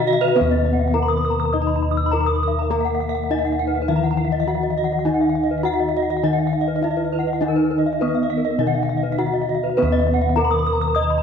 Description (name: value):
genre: Balinese gamelan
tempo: 102 BPM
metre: 4/4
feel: straight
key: Eb pelog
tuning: A4 = 440 Hz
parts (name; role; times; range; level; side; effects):
- gamelan-type bronze metallophone; melody; 0.0-11.2 s; Cb4 to Eb5; -23 LUFS; right 2 dB; none
- gamelan-type bronze metallophone; accompaniment; 0.0-9.8 s; Eb3 to Eb4; -29 LUFS; left 11 dB; none
- gamelan-type bronze metallophone; arpeggios; 0.0-11.2 s; Bb4 to Eb6; -26 LUFS; right 10 dB; none
- gamelan-type bossed gongs; bass; 0.0-11.2 s; Eb2 to Cb5; -22 LUFS; left 1 dB; none
- gamelan-type bronze metallophone; arpeggios; 0.1-11.2 s; Bb4 to Fb6+35c; -24 LUFS; left 9 dB; slapback echo
room: moderate echo chamber reverb, RT60 1.8 s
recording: 1960s-style stereo with parts hard left and right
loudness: -18 LUFS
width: side -7 dB against mid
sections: 0.0-9.8 A section; 9.8-11.2 A section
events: none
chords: none